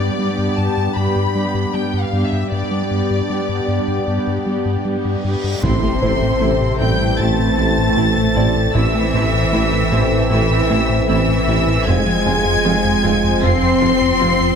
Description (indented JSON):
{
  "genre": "cinematic, hybrid orchestral and electronic film score",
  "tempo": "77 BPM",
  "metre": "4/4",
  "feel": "straight",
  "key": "A minor",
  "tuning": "A4 = 439 Hz",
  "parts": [
    { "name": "clear studio violin section", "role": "melody", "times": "0.0-14.6 s", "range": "D5 to C7", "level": "-24 LUFS", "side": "left 1 dB", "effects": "none" },
    { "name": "warm symphonic viola section", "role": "accompaniment", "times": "0.0-14.3 s", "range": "B3 to G4", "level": "-26 LUFS", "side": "right 1 dB", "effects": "none" },
    { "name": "hollow soft pad", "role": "sustained chords", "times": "0.0-14.6 s", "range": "B3 to D5", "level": "-23 LUFS", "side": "left 1 dB", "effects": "chorus" },
    { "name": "round analog bass", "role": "riff", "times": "0.0-14.5 s", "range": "F2 to A3", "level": "-21 LUFS", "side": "left 2 dB", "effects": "none" },
    { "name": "rich symphonic cello section", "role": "bass", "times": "0.0-14.6 s", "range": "G2 to C4", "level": "-23 LUFS", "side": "right 3 dB", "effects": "none" },
    { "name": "reverse cymbal and impact", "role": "sound effects", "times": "5.2-8.8 s", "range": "none", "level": "-27 LUFS", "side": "equal", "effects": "none" },
    { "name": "rich symphonic violin section", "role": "second line", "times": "5.6-14.6 s", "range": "C5 to C6", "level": "-24 LUFS", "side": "left 3 dB", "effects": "none" },
    { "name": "mellow French horn section", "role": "sustained chords", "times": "5.6-14.6 s", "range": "C3 to C4", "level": "-24 LUFS", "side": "left 4 dB", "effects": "none" },
    { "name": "warm trombone section", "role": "sustained chords", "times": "5.6-14.6 s", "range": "E3 to C4", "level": "-26 LUFS", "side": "right 2 dB", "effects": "none" },
    { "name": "mellow tuba", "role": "bass", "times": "5.6-14.4 s", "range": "F1 to A1", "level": "-25 LUFS", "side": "right 3 dB", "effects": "none" },
    { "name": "punchy sub bass", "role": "bass", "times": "5.6-14.6 s", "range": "F1 to A1", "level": "-25 LUFS", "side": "equal", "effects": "none" },
    { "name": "rich symphonic double bass section", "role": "bass", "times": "5.6-14.3 s", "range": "A1 to F2", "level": "-26 LUFS", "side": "right 4 dB", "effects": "none" },
    { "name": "dark baby grand piano", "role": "texture", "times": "6.0-14.6 s", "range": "C5 to Ab5", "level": "-29 LUFS", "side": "left 3 dB", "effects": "none" }
  ],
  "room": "wet scoring stage reverb, RT60 1.9 s",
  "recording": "none",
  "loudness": "-14 LUFS",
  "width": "side -7 dB against mid",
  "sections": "0.0-5.6 A section; 5.6-14.6 A section",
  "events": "reverse cymbal 5.2-5.6; impact 5.6-8.8",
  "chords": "0.0 G; 5.6 Am; 11.9 Fm"
}